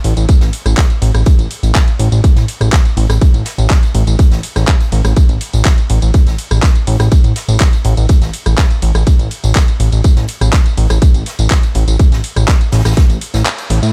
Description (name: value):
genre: progressive house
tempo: 123 BPM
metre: 4/4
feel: straight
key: unclear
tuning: A4 = 439 Hz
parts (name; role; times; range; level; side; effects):
- fat analog bass; bass; 0.0-13.9 s; A1 to A2; -14 LUFS; equal; sidechain pumping
- pop drum kit; drums; 0.0-13.9 s; handclaps, hi-hat, ride cymbal, rim click, tambourine; -23 LUFS; equal; studio reverb
- street-band drum kit; drums; 0.0-13.8 s; hi-hat, snare drum; -34 LUFS; equal; none
- electronic kick drum; drums; 0.3-13.1 s; none; -12 LUFS; equal; studio reverb
room: little or no reverb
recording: none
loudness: -12 LUFS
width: mono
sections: 0.0-13.9 A section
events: drop 0.0-13.9; kick drops out 13.5-13.9; band accent 13.5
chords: none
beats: | 0.29 0.78 1.26 1.75 | 2.24 2.73 3.21 3.70 | 4.19 4.68 5.17 5.65 | 6.14 6.63 7.12 7.61 | 8.09 8.58 9.07 9.56 | 10.04 10.53 11.02 11.51 | 11.99 12.48 12.97 13.46